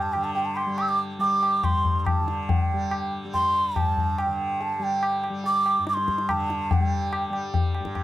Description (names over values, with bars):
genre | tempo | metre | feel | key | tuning
indian classical, Hindustani | 142 BPM | 5/4 | straight | unclear | A4 = 440 Hz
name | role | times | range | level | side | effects
mellow bansuri | melody | 0.0-7.3 s | G5 to E6 | -24 LUFS | right 2 dB | none
tanpura | drone | 0.0-8.0 s | G2 to G3 | -32 LUFS | left 1 dB | none
tabla | percussion | 0.1-8.0 s | none | -26 LUFS | left 2 dB | none
room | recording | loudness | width
light reverb | none | -22 LUFS | side -14 dB against mid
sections
0.0-8.0 A section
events
speeding up 0.0-8.0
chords
none